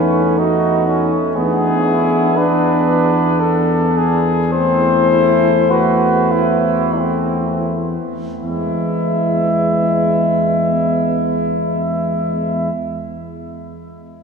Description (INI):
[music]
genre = classical, hymn-like piece for brass band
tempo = 39-62 BPM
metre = 3/4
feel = rubato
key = E major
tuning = A4 = 444 Hz
[part]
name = mellow cornet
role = melody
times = 0.0-12.7 s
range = F#4 to E5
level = -19 LUFS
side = left 4 dB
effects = none
[part]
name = clear flugelhorn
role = second line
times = 0.0-12.7 s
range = B3 to F#4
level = -21 LUFS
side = right 6 dB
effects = none
[part]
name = dark euphonium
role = accompaniment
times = 0.0-12.7 s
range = B3 to E4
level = -24 LUFS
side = left 2 dB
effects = none
[part]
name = warm trombone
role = accompaniment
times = 0.0-12.7 s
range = G#3 to B3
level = -22 LUFS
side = right 3 dB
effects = none
[part]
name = mellow tuba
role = bass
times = 0.0-12.7 s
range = E2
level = -20 LUFS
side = left 2 dB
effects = none
[sound]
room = wet cathedral reverb, RT60 6.2 s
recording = recorded in a church or concert hall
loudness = -14 LUFS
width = side -5 dB against mid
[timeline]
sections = 0.0-8.4 A section; 8.4-12.4 B section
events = slowing down 0.0-8.4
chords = 0.0 B7/E; 1.4 E7; 4.5 Am/E; 8.4 E